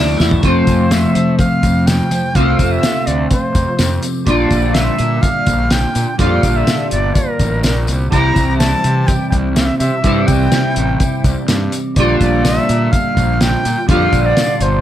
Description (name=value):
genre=psychedelic rock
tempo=125 BPM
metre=4/4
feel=straight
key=unclear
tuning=A4 = 442 Hz
part: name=clean electric guitar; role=riff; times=0.0-14.8 s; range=F2 to F4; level=-16 LUFS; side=equal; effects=flanger, double-tracked left and right
part: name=fuzz fingered electric bass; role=bass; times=0.0-14.8 s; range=G1 to F3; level=-18 LUFS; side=equal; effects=overdrive
part: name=cloth-damped thuddy drum kit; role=drums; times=0.2-14.7 s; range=hi-hat, kick drum, snare drum, toms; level=-17 LUFS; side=equal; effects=none
part: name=tambourine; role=percussion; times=0.2-14.7 s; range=none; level=-33 LUFS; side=left 14 dB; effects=none
part: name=bright reedy silver concert flute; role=melody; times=0.5-14.8 s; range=Bb4 to Bb5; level=-20 LUFS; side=equal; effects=digital delay
room=small room ambience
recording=none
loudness=-12 LUFS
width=side -12 dB against mid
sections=0.4-14.8 A section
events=drum fill 0.2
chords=0.4 F; 4.3 Bb6; 8.1 C; 12.0 Bb6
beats=| 0.44 0.92 1.39 1.87 | 2.35 2.83 3.31 3.79 | 4.27 4.75 5.23 5.71 | 6.20 6.68 7.16 7.64 | 8.12 8.60 9.08 9.56 | 10.04 10.52 11.00 11.48 | 11.96 12.44 12.92 13.40 | 13.88 14.36